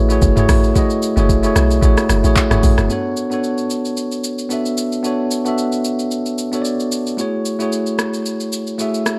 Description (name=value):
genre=amapiano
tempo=112 BPM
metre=4/4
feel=swing 55% on 16ths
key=B dorian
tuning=A4 = 441 Hz
part: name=bell-like tine electric piano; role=accompaniment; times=0.0-9.2 s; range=A3 to E5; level=-20 LUFS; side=equal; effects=none
part: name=deep log drum bass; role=bass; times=0.0-2.9 s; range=F#1 to B1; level=-18 LUFS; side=equal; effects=none
part: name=smooth R&B drum kit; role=drums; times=0.1-9.2 s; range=handclaps, hi-hat, kick drum, rim click, shaker, toms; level=-22 LUFS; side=equal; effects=overdrive
room=moderate plate reverb, RT60 2.0 s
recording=dreamy mix soaked in reverb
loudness=-17 LUFS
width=mono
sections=0.0-2.9 A section; 2.9-9.2 B section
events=drop 0.0-2.9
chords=0.0 F#m9; 2.9 Bm9; 7.2 F#m9